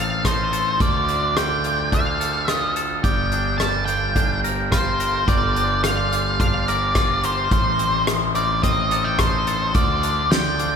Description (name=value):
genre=post-rock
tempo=107 BPM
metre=4/4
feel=straight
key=G minor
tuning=A4 = 440 Hz
part: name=octave-fuzz lead guitar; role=melody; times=0.0-10.8 s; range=C5 to A5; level=-22 LUFS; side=equal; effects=distortion
part: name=glockenspiel with hard plastic mallets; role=arpeggios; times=0.0-10.8 s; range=C6 to G6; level=-30 LUFS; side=right 3 dB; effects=none
part: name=twangy electric guitar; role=arpeggios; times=0.0-10.8 s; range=A2 to Bb4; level=-29 LUFS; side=left 2 dB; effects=none
part: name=fuzz fingered electric bass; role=bass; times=0.0-10.8 s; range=G1 to D2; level=-25 LUFS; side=equal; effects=overdrive
part: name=loose indie drum kit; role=drums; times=0.2-10.7 s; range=hi-hat, kick drum, rim click, snare drum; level=-23 LUFS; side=equal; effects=none
room=wet cathedral reverb, RT60 4.9 s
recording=recorded in a church or concert hall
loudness=-18 LUFS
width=side -6 dB against mid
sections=0.0-10.8 A section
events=none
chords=0.0 Adim; 0.8 Dm; 3.0 Gm7; 7.5 Adim; 9.8 Dm